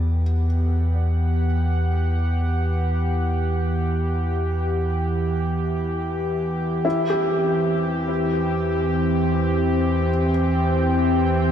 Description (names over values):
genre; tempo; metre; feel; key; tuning
ambient; free time; none; none; E minor; A4 = 440 Hz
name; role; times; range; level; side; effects
warm analog pad; sustained chords; 0.0-11.5 s; E3 to G5; -22 LUFS; equal; chorus, shimmer reverb
felt-muted upright piano; arpeggios; 0.0-11.5 s; E4 to D5; -27 LUFS; left 1 dB; tape echo, shimmer reverb
warm sub bass; bass; 0.0-11.5 s; E2; -23 LUFS; equal; none
room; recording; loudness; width
moderate lush hall reverb, RT60 3.4 s; dark, warm production; -20 LUFS; side -9 dB against mid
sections
0.0-11.5 A section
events
fade-in on analog synth pad 0.0-11.5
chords
0.0 Em; 6.9 C/E